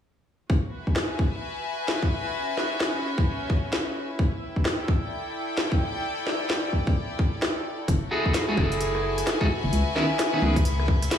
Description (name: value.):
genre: UK garage, two-step garage.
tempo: 130 BPM.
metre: 4/4.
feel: swing 62% on 16ths.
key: F# minor.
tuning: A4 = 440 Hz.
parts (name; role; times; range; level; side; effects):
electronic kick drum; drums; 0.5-11.0 s; none; -25 LUFS; equal; none.
rich studio string section; texture; 0.5-11.2 s; C#4 to G#5; -30 LUFS; left 2 dB; sidechain pumping.
garage drum kit; drums; 1.0-11.2 s; hi-hat, rim click, snare drum; -28 LUFS; equal; none.
organ-like FM bass; bass; 7.9-11.1 s; F#1 to C#2; -25 LUFS; equal; sidechain pumping.
electric guitar at the edge of break-up; stabs; 8.1-10.6 s; D#3 to A4; -26 LUFS; right 1 dB; spring reverb, dub echo.
room: light reverb, digital ambience.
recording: studio reverb.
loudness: -23 LUFS.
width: side -9 dB against mid.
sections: 0.5-11.2 A section.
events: none.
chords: 0.5 F#sus2; 2.3 C#m7; 4.2 Asus2; 6.0 Em7; 7.9 F#m9; 9.7 C#m9.